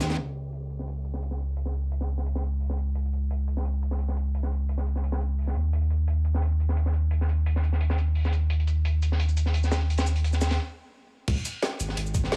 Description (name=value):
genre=liquid drum and bass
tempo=173 BPM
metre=4/4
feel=straight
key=unclear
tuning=A4 = 435 Hz
part: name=smooth synth bass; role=bass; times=0.0-12.4 s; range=Ab1 to Eb2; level=-27 LUFS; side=equal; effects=none
part: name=crunchy breakbeat drum kit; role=drums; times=0.0-12.4 s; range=hi-hat, snare drum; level=-37 LUFS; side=equal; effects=high-pass filter on hats, low-pass filter on hats, high-pass filter on snare, low-pass filter on snare, high-pass filter on room, low-pass filter on room
part: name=drum and bass drum kit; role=drums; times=0.0-12.4 s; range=crash cymbal, hi-hat, shaker, snare drum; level=-37 LUFS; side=equal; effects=none
part: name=electronic kick drum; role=drums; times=11.3-12.2 s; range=none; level=-31 LUFS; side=equal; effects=none
room=little or no reverb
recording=low-pass filter, small room ambience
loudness=-27 LUFS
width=mono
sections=0.2-11.3 A section; 11.3-12.4 B section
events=filter sweep 0.2-11.3; stop 10.6-11.3; drop 11.3-12.4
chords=none